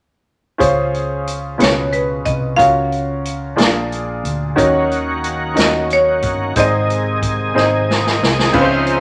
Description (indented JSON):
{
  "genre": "slow gospel",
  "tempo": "60 BPM (dotted quarters)",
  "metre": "6/8",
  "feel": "straight",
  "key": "Db major",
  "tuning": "A4 = 440 Hz",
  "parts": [
    { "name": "clear grand piano", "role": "accompaniment", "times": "0.6-9.0 s", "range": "Ab2 to Eb5", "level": "-20 LUFS", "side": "equal", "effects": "none" },
    { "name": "hollow-body short-scale fingered electric bass", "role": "bass", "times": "0.6-9.0 s", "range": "G1 to Eb2", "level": "-26 LUFS", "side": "equal", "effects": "none" },
    { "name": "swinging big-band drum kit", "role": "drums", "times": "0.6-9.0 s", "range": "crash cymbal, hi-hat, kick drum, snare drum", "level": "-21 LUFS", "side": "equal", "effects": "none" },
    { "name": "marimba with hard mallets", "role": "melody", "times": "1.6-8.3 s", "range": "Cb5 to F5", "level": "-19 LUFS", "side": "equal", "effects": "none" },
    { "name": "bright tonewheel organ", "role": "sustained chords", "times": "4.6-9.0 s", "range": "C3 to C5", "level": "-23 LUFS", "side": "equal", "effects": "slow rotary speaker, overdrive, chorus vibrato" },
    { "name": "warm studio string section", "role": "sustained chords", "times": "8.6-9.0 s", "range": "F5 to C6", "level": "-30 LUFS", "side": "equal", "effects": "none" }
  ],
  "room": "moderate large studio reverb, RT60 1.0 s",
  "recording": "none",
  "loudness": "-16 LUFS",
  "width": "mono",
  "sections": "0.6-8.6 A section",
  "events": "drum fill 7.6-8.6",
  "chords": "0.6 Dbmaj7; 1.6 Db7; 2.6 Gbmaj7/Db; 3.6 Bb7; 4.6 Ebm7; 6.6 Ab",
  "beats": "| 0.60 1.60 | 2.59 3.59 | 4.58 5.57 | 6.57 7.56 | 8.55"
}